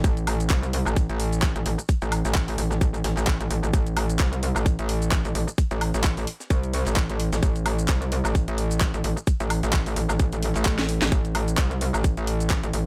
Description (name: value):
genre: bass house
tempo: 130 BPM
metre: 4/4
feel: swing 56% on 16ths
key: A minor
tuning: A4 = 440 Hz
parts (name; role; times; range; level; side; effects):
- metallic wobble bass; bass; 0.0-12.8 s; A1 to C2; -27 LUFS; equal; chorus, sidechain pumping
- breakbeat sampler-style drum kit; drums; 0.0-12.9 s; hi-hat, snare drum; -42 LUFS; equal; none
- electronic kick drum; drums; 0.0-12.6 s; none; -24 LUFS; equal; overdrive
- garage drum kit; drums; 0.0-12.8 s; handclaps, hi-hat, shaker, snare drum, woodblock; -32 LUFS; equal; overdrive
- swell; sound effects; 10.4-11.1 s; none; -38 LUFS; equal; none
room: digital ambience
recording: none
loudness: -24 LUFS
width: mono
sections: 0.0-12.9 A section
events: drum fill 10.8-11.1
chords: none